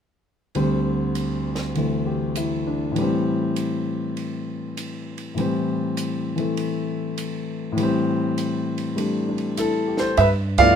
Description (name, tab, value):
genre	jazz piano trio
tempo	100 BPM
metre	4/4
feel	swing 67% on 8ths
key	unclear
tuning	A4 = 440 Hz
part	compact cocktail drum kit	drums	0.5-10.7 s	hi-hat, kick drum, ride cymbal, snare drum	-32 LUFS	right 3 dB	none
part	warm concert grand piano	melody	0.6-10.8 s	D2 to F5	-21 LUFS	equal	none
part	upright bass	bass	10.2-10.8 s	G2	-20 LUFS	right 1 dB	none
room	light reverb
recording	minimal, uncompressed stereo recording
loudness	-21 LUFS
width	side -8 dB against mid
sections	0.5-10.2 A section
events	band accent 10.5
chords	0.5 D7sus4; 3.0 Am7; 10.2 G13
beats	| 0.55 1.15 1.75 2.35 | 2.96 3.56 4.16 4.76 | 5.36 5.97 6.57 7.17 | 7.77 8.37 8.97 9.58 | 10.18